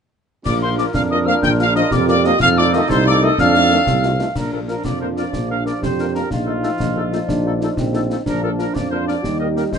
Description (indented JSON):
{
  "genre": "military-style march for wind band",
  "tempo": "123 BPM (dotted quarters)",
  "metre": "6/8",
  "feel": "straight",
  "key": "Bb major",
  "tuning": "A4 = 440 Hz",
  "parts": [
    { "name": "dark trumpet section", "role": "melody", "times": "0.4-9.8 s", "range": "F4 to G5", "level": "-21 LUFS", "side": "right 1 dB", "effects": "none" },
    { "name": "mellow woodwind section", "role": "second line", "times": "0.4-9.6 s", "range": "D4 to Bb4", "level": "-27 LUFS", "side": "left 2 dB", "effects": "none" },
    { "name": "hollow piccolo", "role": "second line", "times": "0.5-4.3 s", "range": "C6 to G6", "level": "-23 LUFS", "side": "left 6 dB", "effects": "none" },
    { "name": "warm euphonium", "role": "second line", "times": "0.5-9.8 s", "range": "C4 to G4", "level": "-24 LUFS", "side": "right 2 dB", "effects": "none" },
    { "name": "mellow tuba", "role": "bass", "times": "0.5-9.8 s", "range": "Bb1 to F2", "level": "-21 LUFS", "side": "right 3 dB", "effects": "none" },
    { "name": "concert snare drum, clash cymbals and concert bass drum", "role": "drums", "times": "0.5-9.8 s", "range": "none", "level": "-26 LUFS", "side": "left 2 dB", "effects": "none" },
    { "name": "mellow French horn section", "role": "accompaniment", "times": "0.6-9.6 s", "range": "A3 to G4", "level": "-26 LUFS", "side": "left 5 dB", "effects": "none" },
    { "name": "dark trombone section", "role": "sustained chords", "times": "0.8-9.8 s", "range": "Eb3 to Eb4", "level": "-26 LUFS", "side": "left 1 dB", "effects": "none" }
  ],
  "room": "light reverb",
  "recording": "nothing above 10.5 kHz",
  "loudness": "-15 LUFS",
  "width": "side -7 dB against mid",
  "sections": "0.5-4.4 A section; 4.4-9.8 B section",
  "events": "none",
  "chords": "0.5 Bb; 2.4 F7; 4.4 Bb; 6.3 F7/Bb; 8.3 Bb; 9.2 Eb"
}